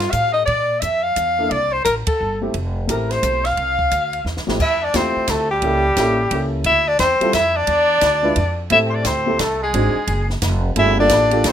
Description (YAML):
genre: jazz, small-group swing and bop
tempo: 175 BPM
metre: 3/4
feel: swing 63% on 8ths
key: F major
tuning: A4 = 441 Hz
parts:
  - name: breathy soprano saxophone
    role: melody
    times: 0.0-11.5 s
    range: F4 to F5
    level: -18 LUFS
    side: left 3 dB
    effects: none
  - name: warm trumpet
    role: second line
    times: 0.0-11.5 s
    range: G3 to F5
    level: -23 LUFS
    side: right 5 dB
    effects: none
  - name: warm upright piano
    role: accompaniment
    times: 0.0-11.5 s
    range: F2 to B4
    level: -22 LUFS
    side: right 1 dB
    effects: none
  - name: upright bass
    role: bass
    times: 0.0-11.5 s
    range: F1 to Bb2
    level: -23 LUFS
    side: equal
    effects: none
  - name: compact cocktail drum kit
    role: drums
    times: 0.0-11.5 s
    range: crash cymbal, hi-hat, kick drum, ride cymbal, snare drum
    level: -26 LUFS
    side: right 1 dB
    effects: none
room: light reverb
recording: minimal, uncompressed stereo recording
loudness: -16 LUFS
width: side -9 dB against mid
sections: 0.0-4.6 A section; 4.6-11.5 B section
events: band accent 2.0; drum fill 4.3-4.6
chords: 0.5 Bb(#11); 1.5 C5; 2.5 Fmaj9; 4.6 Fmaj7; 5.6 A7b9; 6.7 Dm9; 7.7 E7(no3); 8.7 Am7; 9.7 Ab7#11; 10.8 Gm7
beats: 0.14 | 0.48 0.82 1.17 | 1.51 1.85 2.19 | 2.54 2.88 3.23 | 3.57 3.91 4.25 | 4.60 4.94 5.28 | 5.62 5.97 6.31 | 6.65 6.99 7.34 | 7.68 8.02 8.36 | 8.71 9.05 9.39 | 9.73 10.08 10.42 | 10.76 11.10 11.45